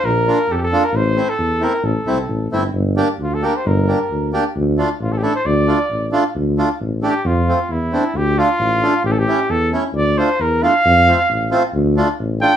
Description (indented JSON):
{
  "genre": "klezmer",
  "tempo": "133 BPM",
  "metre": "2/4",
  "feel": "straight",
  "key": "D minor",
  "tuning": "A4 = 438 Hz",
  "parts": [
    { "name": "mellow cornet", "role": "melody", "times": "0.0-12.6 s", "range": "E4 to G5", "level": "-18 LUFS", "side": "right 1 dB", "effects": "none" },
    { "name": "breathy tuba", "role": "bass", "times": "0.0-12.5 s", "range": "G1 to F2", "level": "-19 LUFS", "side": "left 1 dB", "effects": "none" },
    { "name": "accordion", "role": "accompaniment", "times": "0.3-12.5 s", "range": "A3 to G4", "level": "-19 LUFS", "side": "right 1 dB", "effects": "none" }
  ],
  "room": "wet studio ambience, RT60 0.5 s",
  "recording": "band playing live in one room",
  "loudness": "-15 LUFS",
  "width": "side -9 dB against mid",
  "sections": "0.0-6.4 A section; 6.4-12.6 B section",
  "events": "cornet solo 6.4-12.6",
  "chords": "0.0 Bb; 0.9 Am; 2.7 Gm; 4.5 Dm; 7.3 F; 8.2 Dm; 9.1 A; 10.0 Dm; 10.9 F; 11.8 Dm"
}